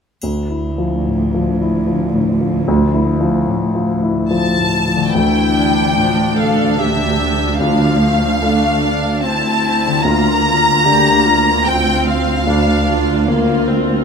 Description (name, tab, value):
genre	cinematic, emotional film score for orchestra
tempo	74 BPM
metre	3/4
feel	rubato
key	D minor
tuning	A4 = 440 Hz
part	warm grand piano	accompaniment	0.2-14.0 s	D2 to E4	-17 LUFS	left 2 dB	none
part	dark studio cello section	bass	0.2-14.0 s	D2	-20 LUFS	right 3 dB	none
part	triangle	percussion	0.2-1.8 s	none	-39 LUFS	left 1 dB	none
part	rich studio violin section	melody	4.3-13.7 s	E5 to Bb5	-16 LUFS	left 2 dB	none
part	concert harp	arpeggios	5.0-13.9 s	D3 to F4	-23 LUFS	left 10 dB	none
part	rich studio viola section	accompaniment	5.1-14.0 s	F3 to A4	-19 LUFS	right 1 dB	none
room	light reverb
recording	close, detailed microphones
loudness	-13 LUFS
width	side -6 dB against mid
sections	0.2-5.1 A section; 5.1-14.0 B section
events	none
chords	0.2 Dmadd9; 10.0 Bbadd9/D